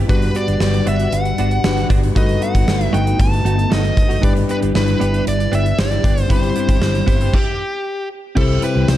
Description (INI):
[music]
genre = 1980s-style pop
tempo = 116 BPM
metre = 4/4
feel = straight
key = unclear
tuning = A4 = 443 Hz
[part]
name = barky tine electric piano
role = accompaniment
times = 0.0-9.0 s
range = G2 to B5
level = -22 LUFS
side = left 4 dB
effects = none
[part]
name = string machine, violas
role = sustained chords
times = 0.0-9.0 s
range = C3 to F#5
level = -26 LUFS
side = equal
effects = ensemble chorus
[part]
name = direct-recorded clean electric guitar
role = riff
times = 0.0-8.9 s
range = A3 to G4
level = -27 LUFS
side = right 5 dB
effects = ensemble chorus, digital delay
[part]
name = fingered electric bass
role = bass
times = 0.0-9.0 s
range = G1 to C2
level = -19 LUFS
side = equal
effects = none
[part]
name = smooth overdriven lead guitar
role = melody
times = 0.1-9.0 s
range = G4 to A5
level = -23 LUFS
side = equal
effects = none
[part]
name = gated 80s drum kit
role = drums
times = 0.1-9.0 s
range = crash cymbal, hi-hat, kick drum, snare drum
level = -18 LUFS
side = equal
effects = none
[part]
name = tambourine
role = percussion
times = 8.4-9.0 s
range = none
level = -40 LUFS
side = right 8 dB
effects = none
[sound]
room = light reverb, studio reverb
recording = dark, warm production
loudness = -14 LUFS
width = side -13 dB against mid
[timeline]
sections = 0.0-8.4 A section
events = stop 7.3-8.4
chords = 0.1 Gmaj7; 2.2 B7/G; 4.2 Em7/G; 6.3 Cmaj7/G; 8.4 C